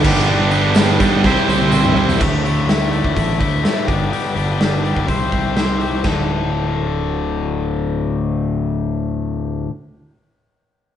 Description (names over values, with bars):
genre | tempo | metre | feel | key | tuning
classic rock | 125 BPM | 4/4 | straight | unclear | A4 = 439 Hz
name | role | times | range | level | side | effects
biting overdriven guitar | riff | 0.0-9.7 s | D2 to C5 | -20 LUFS | left 4 dB | none
tight distorted guitar | riff | 0.0-2.2 s | G2 to C5 | -18 LUFS | right 7 dB | distortion
growling fingered electric bass | bass | 0.0-9.7 s | D1 to G2 | -21 LUFS | right 1 dB | overdrive
big rock drum kit | drums | 0.0-6.2 s | crash cymbal, hi-hat, kick drum, snare drum, toms | -19 LUFS | right 1 dB | none
tambourine | percussion | 0.0-2.2 s | none | -35 LUFS | left 4 dB | none
room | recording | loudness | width
moderate stone room reverb, RT60 1.0 s | band playing live in one room, nothing above 10.9 kHz | -15 LUFS | side -10 dB against mid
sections
0.0-2.2 A section; 2.2-6.1 B section; 6.1-9.9 C section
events
drum fill 1.2-2.2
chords
0.1 G; 1.2 C; 2.2 Dsus2; 3.9 G; 5.1 C; 6.1 D5